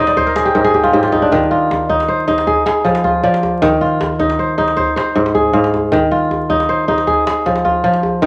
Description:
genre	west african traditional, West African string and xylophone music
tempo	104 BPM (dotted quarters)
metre	12/8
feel	straight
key	F dorian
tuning	A4 = 442 Hz
part	kora	arpeggios	0.0-8.3 s	Ab2 to G5	-15 LUFS	equal	none
part	djembe	percussion	0.1-8.3 s	none	-26 LUFS	equal	none
room	moderate large studio reverb, RT60 0.9 s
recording	vinyl crackle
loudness	-15 LUFS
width	mono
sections	0.0-8.3 A section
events	kora fill 0.0-1.3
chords	0.2 N.C.; 1.3 Cmadd11/Eb; 2.5 Fm; 3.6 Cmadd11/Eb; 4.8 Ab; 5.9 Cmadd11/Eb; 7.1 Fm

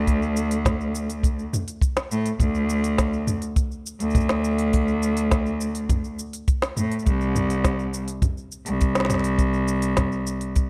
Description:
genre	folktronica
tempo	103 BPM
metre	4/4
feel	straight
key	unclear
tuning	A4 = 440 Hz
part	rich cello	bass	0.0-10.7 s	C2 to A2	-26 LUFS	equal	none
part	kick drum	drums	0.1-10.7 s	none	-25 LUFS	equal	none
part	organic electronic drum kit	drums	0.1-10.7 s	cabasa, hi-hat, snare drum, toms	-30 LUFS	equal	overdrive
room	little or no reverb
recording	dry, close 1970s-style studio recording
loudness	-24 LUFS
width	mono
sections	0.0-10.7 A section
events	none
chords	none

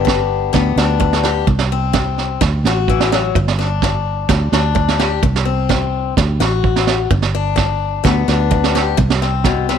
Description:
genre	highlife guitar band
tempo	128 BPM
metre	4/4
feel	straight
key	G major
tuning	A4 = 440 Hz
part	picked swing-style acoustic guitar	accompaniment	0.0-9.8 s	G2 to G4	-19 LUFS	left 14 dB	none
part	fingered electric bass	bass	0.0-9.8 s	G1 to D2	-18 LUFS	right 1 dB	none
part	vintage brush drum kit	drums	0.1-9.7 s	kick drum, snare drum	-18 LUFS	right 5 dB	none
room	small room ambience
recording	1960s-style stereo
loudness	-13 LUFS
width	side -8 dB against mid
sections	0.0-9.8 A section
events	none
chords	0.0 G; 1.5 C; 2.4 D; 3.4 G5; 5.2 C; 6.2 D; 7.1 G; 9.0 N.C.

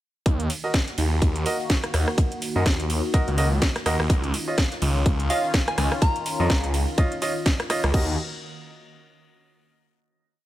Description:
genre	bass house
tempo	125 BPM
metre	4/4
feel	swing 58% on 16ths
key	Eb minor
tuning	A4 = 440 Hz
part	sweeping resonant pad	sustained chords	0.3-8.2 s	Eb3 to Gb4	-32 LUFS	left 1 dB	chorus, sidechain pumping
part	phased detuned saw bass	bass	0.3-8.2 s	Db2 to Gb2	-23 LUFS	equal	phaser, tube saturation, sidechain pumping
part	electronic kick drum	drums	0.3-8.1 s	none	-22 LUFS	equal	none
part	house drum kit	drums	0.3-8.1 s	crash cymbal, hi-hat, ride cymbal, rim click, snare drum	-29 LUFS	equal	none
part	jazz brush drum kit	drums	0.3-7.8 s	hi-hat, snare drum	-39 LUFS	left 3 dB	none
part	warm concert grand piano	stabs	0.6-8.1 s	F4 to Eb5	-30 LUFS	right 2 dB	sidechain pumping, dub echo
part	soft synth bell	melody	5.3-6.7 s	F5 to Bb5	-28 LUFS	equal	chorus, dub echo
room	small room ambience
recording	none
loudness	-20 LUFS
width	side -14 dB against mid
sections	0.3-7.9 drop; 7.9-9.9 final chord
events	drop 0.3-7.9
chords	0.3 Ebm; 4.1 Dbadd9; 7.9 Ebm

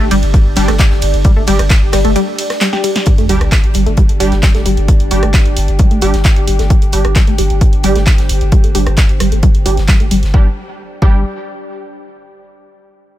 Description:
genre	driving peak-time techno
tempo	132 BPM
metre	4/4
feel	straight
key	unclear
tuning	A4 = 440 Hz
part	tight sequenced synth	riff	0.0-11.2 s	G3 to G4	-19 LUFS	left 1 dB	chorus, phaser, tube saturation, sidechain pumping, tape echo
part	saturated sub bass	bass	0.0-11.2 s	G1	-14 LUFS	equal	overdrive, sidechain pumping, low-pass filter
part	warbly tape-like pad	texture	0.0-12.1 s	D4 to G5	-23 LUFS	left 1 dB	chorus, built-in reverb, phaser, sidechain pumping
part	punchy analog drum machine	drums	0.1-10.3 s	handclaps, hi-hat, ride cymbal, rim click, snare drum	-20 LUFS	right 1 dB	none
part	tight funk drum kit	drums	0.1-10.3 s	hi-hat, snare drum	-30 LUFS	left 3 dB	none
part	electronic kick drum	drums	0.3-11.1 s	none	-9 LUFS	equal	none
part	rave stab	stabs	0.6-11.2 s	G3 to G4	-22 LUFS	right 4 dB	chorus, built-in reverb, cassette tape, sidechain pumping, digital delay
part	sub drop	sound effects	3.2-4.9 s	none	-22 LUFS	left 1 dB	none
room	little or no reverb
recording	none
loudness	-9 LUFS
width	side -14 dB against mid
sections	0.0-3.1 A section; 3.1-10.3 B section; 10.3-12.2 C section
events	drop 0.0-3.1; break 2.2-3.1; drum fill 2.6-3.1; fade-out on ambient pad 3.1-10.3; impact 3.1-4.9; filter sweep on synth arpeggio sound 3.1-10.3; filter sweep on synth stab 3.1-10.3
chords	0.0 G5

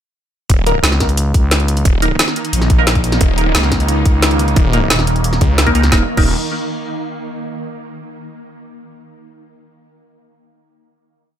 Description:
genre	dark technical drum and bass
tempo	177 BPM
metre	4/4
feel	straight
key	unclear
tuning	A4 = 444 Hz
part	swarming drone	sustained chords	1.7-6.1 s	Eb3 to Eb4	-22 LUFS	right 1 dB	built-in reverb, phaser, sidechain pumping
part	snarling distorted saw bass	bass	0.5-6.3 s	Eb1 to Db2	-16 LUFS	equal	distortion, sidechain pumping
part	drum and bass drum kit	drums	0.5-6.2 s	crash cymbal, hi-hat, snare drum	-17 LUFS	equal	overdrive, studio reverb
part	electronic kick drum	drums	0.5-6.2 s	none	-14 LUFS	equal	studio reverb
part	filtered dub chord stab	stabs	0.7-6.3 s	Bb3 to Bb4	-20 LUFS	equal	phaser, wide subtle chorus, digital delay
part	growling FM bass	bass	0.8-5.4 s	Eb1 to Db2	-15 LUFS	equal	none
room	little or no reverb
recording	none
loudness	-12 LUFS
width	side -10 dB against mid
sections	0.5-5.9 drop; 5.9-7.3 final chord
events	drop 0.5-5.9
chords	0.5 Eb5

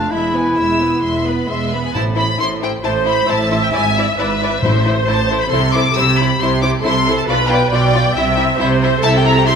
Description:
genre	quick classical-period movement for symphony orchestra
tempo	135 BPM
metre	4/4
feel	straight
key	A minor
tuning	A4 = 440 Hz
part	clear studio violin section	melody	0.0-9.5 s	E5 to E6	-20 LUFS	left 4 dB	none
part	clear clarinet	second line	0.0-1.5 s	D4 to E4	-17 LUFS	equal	none
part	rich chamber violin section	second line	0.0-9.6 s	E4 to G5	-22 LUFS	left 3 dB	none
part	rich studio viola section	accompaniment	0.0-9.6 s	G#3 to E5	-19 LUFS	right 2 dB	none
part	clear symphonic cello section	bass	0.0-9.6 s	E2 to C3	-20 LUFS	right 2 dB	none
part	rich chamber double bass section	bass	0.0-9.6 s	E1 to C2	-22 LUFS	right 4 dB	none
part	timpani	percussion	2.0-5.2 s	A2	-21 LUFS	left 1 dB	none
room	moderate scoring stage reverb, RT60 1.7 s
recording	minimal, uncompressed stereo recording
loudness	-13 LUFS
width	side -6 dB against mid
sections	0.0-1.9 A section; 1.9-9.6 B section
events	none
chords	0.1 E; 1.9 Am; 3.7 E7/G#; 4.6 Am; 5.5 C; 7.3 G7/B; 8.2 C

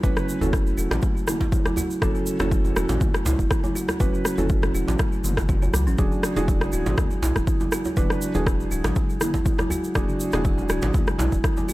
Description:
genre	afro house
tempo	121 BPM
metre	4/4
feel	swing 53% on 16ths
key	F# minor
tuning	A4 = 439 Hz
part	kalimba	arpeggios	0.0-11.7 s	C#3 to F#4	-28 LUFS	equal	sidechain pumping, digital delay
part	felt-muted upright piano	stabs	0.0-11.7 s	C#4 to B4	-30 LUFS	right 2 dB	sidechain pumping, digital delay
part	round analog bass	bass	0.0-11.4 s	D1 to C#2	-26 LUFS	equal	sidechain pumping
part	electronic kick drum	drums	0.0-11.5 s	none	-24 LUFS	equal	overdrive
part	congas	percussion	0.0-11.7 s	none	-34 LUFS	left 3 dB	none
part	egg shaker	percussion	0.0-11.7 s	none	-36 LUFS	right 3 dB	none
part	electronic rim click	drums	0.2-11.5 s	none	-30 LUFS	equal	overdrive
part	djembe	percussion	0.4-11.7 s	none	-32 LUFS	right 2 dB	none
room	studio reverb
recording	none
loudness	-20 LUFS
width	side -18 dB against mid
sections	0.0-11.7 A section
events	none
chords	0.0 F#m; 6.0 E7

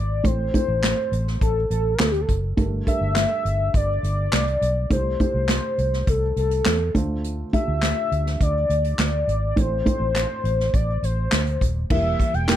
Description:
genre	piano-driven pop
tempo	103 BPM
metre	4/4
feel	straight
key	unclear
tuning	A4 = 442 Hz
part	warm velvety synth lead	melody	0.0-12.6 s	G4 to G5	-25 LUFS	left 2 dB	chorus
part	felt-muted upright piano	accompaniment	0.0-12.6 s	G2 to C5	-28 LUFS	right 2 dB	none
part	vintage muted fingered electric bass	bass	0.0-12.6 s	Eb1 to E2	-24 LUFS	equal	none
part	unplugged drum kit	drums	0.2-12.6 s	crash cymbal, handclaps, hi-hat, kick drum, snare drum	-24 LUFS	equal	none
room	little or no reverb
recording	none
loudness	-19 LUFS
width	side -11 dB against mid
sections	0.0-11.9 A section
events	none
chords	0.2 Am; 2.6 Gmadd9; 4.9 C6; 6.9 Dm7; 9.6 Am; 11.9 Edim

